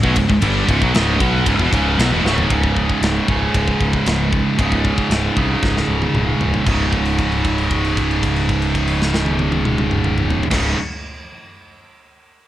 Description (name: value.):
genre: heavy metal.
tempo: 115 BPM.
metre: 4/4.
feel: straight.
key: unclear.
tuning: A4 = 440 Hz.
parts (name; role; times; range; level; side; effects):
high-gain distorted guitar; riff; 0.0-10.8 s; C#2 to B3; -20 LUFS; right 5 dB; distortion, cassette tape.
scooped high-gain guitar; riff; 0.0-10.8 s; C#2 to B3; -22 LUFS; left 7 dB; distortion, cassette tape.
scooped high-gain guitar; riff; 0.0-2.5 s; C#2 to B3; -21 LUFS; equal; distortion, cassette tape.
growling fingered electric bass; bass; 0.0-10.7 s; C#1 to B#1; -21 LUFS; equal; overdrive.
tight metal drum kit; drums; 0.0-10.6 s; crash cymbal, kick drum, ride cymbal, snare drum, toms; -21 LUFS; equal; cassette tape.
room: studio reverb.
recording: home recording on cassette.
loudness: -15 LUFS.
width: side -13 dB against mid.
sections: 0.0-2.5 A section; 2.5-6.7 B section; 6.7-10.8 C section.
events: drum fill 2.2, 5.6-6.7; held note 6.7-10.5.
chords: 0.0 C#m; 2.5 C#5.